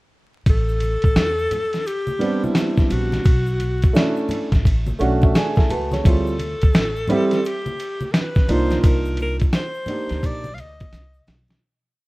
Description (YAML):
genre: hip hop, jazz-hop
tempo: 86 BPM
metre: 4/4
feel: swing 64% on 16ths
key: unclear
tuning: A4 = 441 Hz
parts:
  - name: breathy alto saxophone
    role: melody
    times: 0.5-11.3 s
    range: E4 to F5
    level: -26 LUFS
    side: left 1 dB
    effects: none
  - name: upright bass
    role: bass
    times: 0.5-11.6 s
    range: A1 to E2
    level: -24 LUFS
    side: equal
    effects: none
  - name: dusty soul sampler-style drum kit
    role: drums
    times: 0.5-11.6 s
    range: hi-hat, kick drum, ride cymbal, snare drum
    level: -18 LUFS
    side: equal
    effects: none
  - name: egg shaker and congas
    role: percussion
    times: 0.5-11.6 s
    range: none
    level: -31 LUFS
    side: left 1 dB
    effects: none
  - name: dark grand piano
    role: accompaniment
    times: 2.2-10.4 s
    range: G3 to A5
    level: -22 LUFS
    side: right 2 dB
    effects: none
room: light reverb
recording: rough home demo mix, vinyl crackle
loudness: -17 LUFS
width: side -21 dB against mid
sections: 0.5-11.6 head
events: grand piano fill 4.6-6.0; fade-out 8.8-11.6; drum fill 10.9-11.6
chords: 0.5 Am11; 3.3 Bm11; 6.0 Dm11; 8.5 Cm11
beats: | 0.46 1.16 1.86 2.56 | 3.25 3.95 4.65 5.35 | 6.04 6.74 7.44 8.14 | 8.83 9.53 10.23 10.93